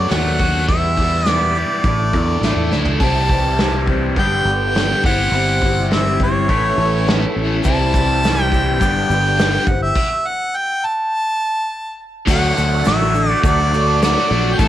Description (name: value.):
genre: folk rock and heartland rock.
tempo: 104 BPM.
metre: 4/4.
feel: straight.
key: D major.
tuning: A4 = 440 Hz.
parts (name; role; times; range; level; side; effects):
clear harmonica; melody; 0.0-14.7 s; C#5 to A5; -19 LUFS; right 1 dB; cassette tape, analog delay.
picked twelve-string acoustic guitar; accompaniment; 0.0-14.7 s; E2 to A4; -25 LUFS; left 7 dB; cassette tape.
tonewheel organ; sustained chords; 0.0-14.7 s; A3 to D5; -29 LUFS; right 8 dB; slow rotary speaker, overdrive, chorus vibrato, cassette tape.
cranked stack guitar; riff; 0.0-14.7 s; E2 to A4; -21 LUFS; left 1 dB; overdrive, phaser, cassette tape.
fingered electric bass; bass; 0.0-14.7 s; G1 to E2; -20 LUFS; equal; none.
soft brush drum kit; drums; 0.1-14.7 s; crash cymbal, hi-hat, kick drum, snare drum, toms; -20 LUFS; equal; cassette tape.
tube shaker; percussion; 7.6-14.7 s; none; -39 LUFS; right 10 dB; none.
room: small room ambience.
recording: home recording on cassette.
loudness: -14 LUFS.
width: side -12 dB against mid.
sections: 0.0-3.0 A section; 3.0-12.3 B section; 12.3-14.7 C section.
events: drum fill 2.7; stop 10.0-12.3.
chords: 0.0 Bm7; 0.7 Em; 1.9 Asus4; 3.0 C; 4.2 G; 5.0 C/G; 6.5 Aadd9; 7.6 C; 8.8 G; 9.7 C/G; 11.1 N.C.; 12.3 D.